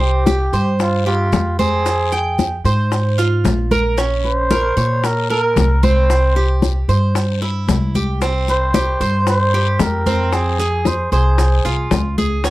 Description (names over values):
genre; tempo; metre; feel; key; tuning
latin, Cuban son and guajira; 113 BPM; 4/4; straight; F harmonic minor; A4 = 440 Hz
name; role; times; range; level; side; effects
trumpet with cup mute; melody; 0.0-12.1 s; F4 to C5; -20 LUFS; equal; none
Cuban tres; arpeggios; 0.0-12.5 s; C4 to G5; -21 LUFS; right 4 dB; slapback echo
upright bass; bass; 0.0-12.5 s; Bb1 to Bb2; -17 LUFS; equal; none
bongos; percussion; 0.0-12.5 s; none; -23 LUFS; left 6 dB; none
congas; percussion; 0.0-12.5 s; none; -21 LUFS; left 2 dB; none
guiro; percussion; 0.3-12.5 s; none; -32 LUFS; left 16 dB; none
maracas; percussion; 0.3-12.5 s; none; -34 LUFS; right 9 dB; none
room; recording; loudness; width
little or no reverb; dry, close 1970s-style studio recording; -14 LUFS; side -17 dB against mid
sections
0.0-12.5 A section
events
none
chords
0.0 Csus4; 1.9 Fmadd9; 4.0 Bbm; 6.1 C; 8.2 Csus4; 10.3 Fm